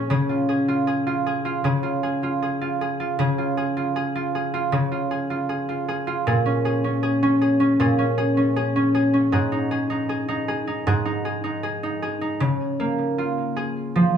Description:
folktronica; 78 BPM; 4/4; straight; Db major; A4 = 440 Hz
concert harp; solo; 0.0-14.2 s; Ab2 to Ab4; -20 LUFS; equal; tape echo
light reverb; small room reverb; -20 LUFS; side -8 dB against mid
0.0-12.4 A section; 12.4-14.2 B section
0.1 Db; 6.3 Bbm7; 9.3 Ab5; 12.4 Db6

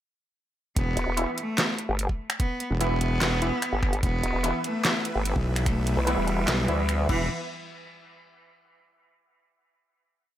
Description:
heavy wobble dubstep; 147 BPM; 4/4; half-time; E minor; A4 = 444 Hz
rich cello; melody; 0.8-7.2 s; E3 to B3; -31 LUFS; equal; dub echo
wobble bass; bass; 0.8-7.3 s; E1 to B1; -26 LUFS; equal; chorus, overdrive
dubstep drum kit; drums; 0.8-7.2 s; crash cymbal, finger snaps, handclaps, hi-hat, snare drum; -28 LUFS; equal
electronic kick drum; drums; 0.8-7.2 s; -27 LUFS; equal
vowel-sweep wobble bass; bass; 1.0-7.1 s; E1 to D2; -26 LUFS; equal; chorus, overdrive
orchestra-hit-like synth stab; stabs; 1.2-7.2 s; E3 to E4; -32 LUFS; equal; built-in reverb, dub echo
supersaw chords; sustained chords; 4.0-7.3 s; E3 to E5; -34 LUFS; equal; sidechain pumping
light reverb, digital ambience; -23 LUFS; side -12 dB against mid
0.8-7.3 drop; 7.3-8.9 final hit
drop 0.8-7.3
0.8 E5; 7.3 N.C.

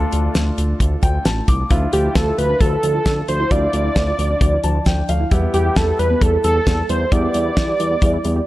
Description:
synth-pop; 133 BPM; 4/4; straight; D dorian; A4 = 439 Hz
warm concert grand piano; accompaniment; 0.0-8.5 s; B3 to D6; -27 LUFS; left 1 dB
brassy analog pad; sustained chords; 0.0-1.7 s; A3 to F4; -28 LUFS; equal; chorus
smooth synth bass; bass; 0.0-8.4 s; A1 to E2; -20 LUFS; equal
damped 70s drum kit; drums; 0.1-8.4 s; hi-hat, kick drum, snare drum; -18 LUFS; equal
soft round pluck; arpeggios; 1.7-8.4 s; F3 to G4; -27 LUFS; right 1 dB; chorus, tape echo
wide unison lead; melody; 1.9-8.5 s; G4 to D5; -19 LUFS; right 1 dB; tape echo
little or no reverb; dry, gritty hardware recording, lossy compression artefacts; -15 LUFS; side -16 dB against mid
0.0-1.7 A section; 1.7-8.5 B section
grand piano fill 0.8-1.7, 4.4-5.3
0.0 Dm; 1.7 Dmadd9; 5.3 Em

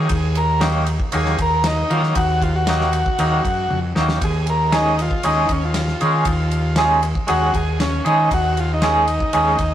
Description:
psychedelic rock; 117 BPM; 4/4; straight; A4 = 442 Hz
combo organ; melody; 0.0-9.7 s; Db4 to Bb4; -22 LUFS; equal
twangy electric guitar; riff; 0.0-9.6 s; Eb3 to Ab4; -20 LUFS; right 1 dB; tremolo
fuzz fingered electric bass; bass; 0.0-9.7 s; Eb2 to Eb3; -20 LUFS; equal; overdrive
damped 70s drum kit; drums; 0.1-9.7 s; kick drum, ride cymbal, snare drum, toms; -25 LUFS; equal
moderate stone room reverb, RT60 1.1 s; rough rehearsal-room recording, tube saturation; -16 LUFS; side -11 dB against mid
0.0-9.7 A section
transistor combo organ solo 0.0-9.7; drum fill 3.7-4.2
0.0 Ebm; 4.2 Dbsus2/Eb

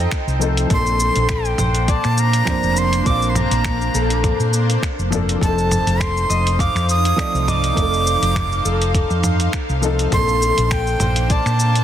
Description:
sunset chillout; 102 BPM; 4/4; swing 55% on 16ths; Bb major; A4 = 440 Hz
breathy bright jazz flute; melody; 0.0-11.8 s; Eb5 to Eb6; -22 LUFS; right 2 dB; ping-pong delay
dark grand piano; accompaniment; 0.0-11.8 s; F3 to F5; -26 LUFS; moving between left 7 dB and right 8 dB; auto-pan
shimmering ambient pad; sustained chords; 0.0-11.8 s; Bb3 to G5; -26 LUFS; equal; chorus, built-in reverb
concert harp; arpeggios; 0.0-11.8 s; A4 to F5; -26 LUFS; left 5 dB; digital delay
hollow-body short-scale fingered electric bass; bass; 0.0-11.8 s; F1 to Bb2; -19 LUFS; equal
dusty soul sampler-style drum kit; drums; 0.1-11.8 s; finger snaps, hi-hat, shaker, toms; -24 LUFS; right 1 dB; soft clipping on snare
electronic kick drum; drums; 0.1-11.4 s; -21 LUFS; equal; overdrive
light reverb; dense, heavily limited modern master; -15 LUFS; side -10 dB against mid
0.0-11.8 A section
0.0 F7; 0.7 Bbmaj9; 5.4 F7; 10.1 Bbmaj9

